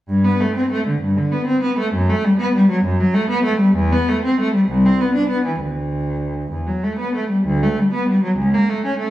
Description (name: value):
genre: classical, baroque-style suite movement for unaccompanied cello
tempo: 65 BPM (dotted quarters)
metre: 6/8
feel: rubato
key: G major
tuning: A4 = 439 Hz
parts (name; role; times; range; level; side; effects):
- rich cello; solo; 0.1-9.1 s; C2 to D4; -16 LUFS; equal; none
room: wet stone room reverb, RT60 1.3 s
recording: heard from further back in the room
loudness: -16 LUFS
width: side -14 dB against mid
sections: 0.1-9.1 A section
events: none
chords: none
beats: | 0.08 1.01 | 1.92 2.82 | 3.75 4.67 | 5.59 6.52 | 7.46 8.37